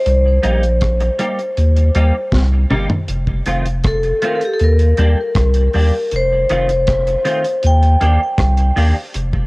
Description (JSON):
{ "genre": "roots reggae", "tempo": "79 BPM", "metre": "4/4", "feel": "straight", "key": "unclear", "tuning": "A4 = 441 Hz", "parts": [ { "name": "vibraphone with hard mallets", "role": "melody", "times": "0.0-8.7 s", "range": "G4 to G5", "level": "-18 LUFS", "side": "left 1 dB", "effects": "cassette tape, tape echo" }, { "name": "warm sub bass", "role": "bass", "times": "0.1-9.5 s", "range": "F1 to Eb2", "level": "-14 LUFS", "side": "equal", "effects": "none" }, { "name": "deep reggae drum kit", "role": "drums", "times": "0.1-9.5 s", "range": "hi-hat, kick drum, rim click, snare drum, toms", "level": "-21 LUFS", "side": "equal", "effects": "cassette tape" }, { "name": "clean electric guitar", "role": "accompaniment", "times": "0.4-9.0 s", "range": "Eb3 to G4", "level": "-24 LUFS", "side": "right 1 dB", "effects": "ensemble chorus, cassette tape, tape echo" } ], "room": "light reverb, small room ambience", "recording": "home recording on cassette", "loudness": "-13 LUFS", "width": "side -24 dB against mid", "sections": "0.0-3.1 A section; 3.1-9.5 B section", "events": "drum fill 2.3-3.1", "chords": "0.1 Cm7; 3.1 F7; 4.6 Ebmaj7; 6.1 F7; 7.6 Ebmaj7", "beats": "| 0.06 0.82 1.58 2.33 | 3.09 3.85 4.61 5.36 | 6.12 6.88 7.63 8.39 | 9.14" }